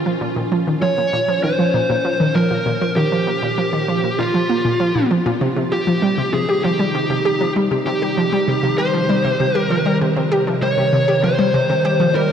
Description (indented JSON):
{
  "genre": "ambient, sequencer-driven space music",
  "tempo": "98 BPM",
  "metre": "4/4",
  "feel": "straight",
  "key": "unclear",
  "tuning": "A4 = 440 Hz",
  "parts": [
    { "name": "evolving wavetable pad", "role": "sustained chords", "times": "0.0-12.3 s", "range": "Bb2 to F4", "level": "-24 LUFS", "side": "equal", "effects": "phaser, built-in reverb" },
    { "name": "analog pluck", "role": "riff", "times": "0.1-12.3 s", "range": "Bb2 to G4", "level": "-19 LUFS", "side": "equal", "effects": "chorus, ping-pong delay" },
    { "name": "dark smooth lead guitar", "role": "melody", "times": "0.8-12.3 s", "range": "F4 to Db5", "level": "-19 LUFS", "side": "equal", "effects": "overdrive, ping-pong delay" }
  ],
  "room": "wet huge ambient reverb, RT60 8.3 s",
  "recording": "worn, warbling old tape, cassette tape, warbly pitch drift",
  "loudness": "-15 LUFS",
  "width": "side -8 dB against mid",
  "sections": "0.0-12.3 A section",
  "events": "fade-in on ambient pad 0.0-12.3",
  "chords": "0.0 Bbm; 5.4 Cm"
}